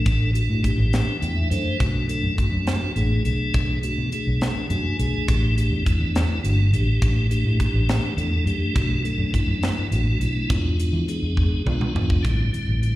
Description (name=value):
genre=electric jazz fusion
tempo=69 BPM (dotted quarters)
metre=6/8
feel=straight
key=unclear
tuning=A4 = 443 Hz
part: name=tonewheel organ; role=accompaniment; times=0.0-13.0 s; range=D3 to G#5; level=-26 LUFS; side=left 1 dB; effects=slow rotary speaker, overdrive, plate reverb
part: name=vintage muted fingered electric bass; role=bass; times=0.0-13.0 s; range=G1 to E3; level=-22 LUFS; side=equal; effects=none
part: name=crisp fusion drum kit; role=drums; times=0.1-13.0 s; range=hi-hat, kick drum, snare drum, toms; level=-24 LUFS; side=equal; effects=none
room=light reverb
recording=live gig heard through the venue's PA, recital hall reverb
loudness=-20 LUFS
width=side -16 dB against mid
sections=0.0-12.2 A section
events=tonewheel organ fill 0.9-1.8, 4.4-5.3; drum fill 11.4-12.2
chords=0.0 A7sus4; 1.8 Bm7; 5.3 A7sus4; 8.8 Bm7; 10.5 E7b9; 12.2 Am7